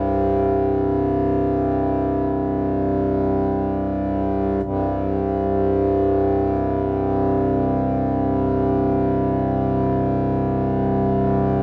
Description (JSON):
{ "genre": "world meditative, free-time meditation music", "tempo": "free time", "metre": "none", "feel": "none", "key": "unclear", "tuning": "A4 = 440 Hz", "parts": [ { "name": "pedal harmonium", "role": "solo", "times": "0.0-11.6 s", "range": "C2 to G2", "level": "-20 LUFS", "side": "equal", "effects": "none" } ], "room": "wet huge ambient reverb, RT60 4.9 s", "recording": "dark, warm production, nothing above 10.7 kHz", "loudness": "-21 LUFS", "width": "mono", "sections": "0.0-11.6 A section", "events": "none", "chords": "none" }